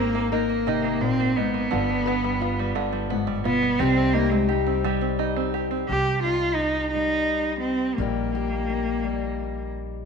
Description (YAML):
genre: acoustic folk duo or small band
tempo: 58 BPM (dotted quarters)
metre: 6/8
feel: straight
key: C minor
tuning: A4 = 440 Hz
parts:
  - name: warm cello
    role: melody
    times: 0.0-9.7 s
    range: G3 to G4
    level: -24 LUFS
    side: right 1 dB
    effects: slapback echo
  - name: fingerpicked steel-string acoustic guitar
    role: accompaniment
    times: 0.0-10.1 s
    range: G2 to B4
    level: -28 LUFS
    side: left 10 dB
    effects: none
  - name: open-back banjo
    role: arpeggios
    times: 0.0-6.0 s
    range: D3 to G4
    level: -28 LUFS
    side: right 10 dB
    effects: none
  - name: upright bass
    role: bass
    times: 0.0-10.0 s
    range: G1 to C2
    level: -30 LUFS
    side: right 1 dB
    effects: none
room: moderate echo chamber reverb, RT60 2.1 s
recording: 1960s-style stereo with parts hard left and right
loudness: -22 LUFS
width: side -6 dB against mid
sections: 0.0-5.9 A section; 5.9-10.1 B section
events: cello solo 0.0-5.9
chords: 0.0 Abadd9; 1.7 G7; 3.8 Cm; 8.0 Eb/Bb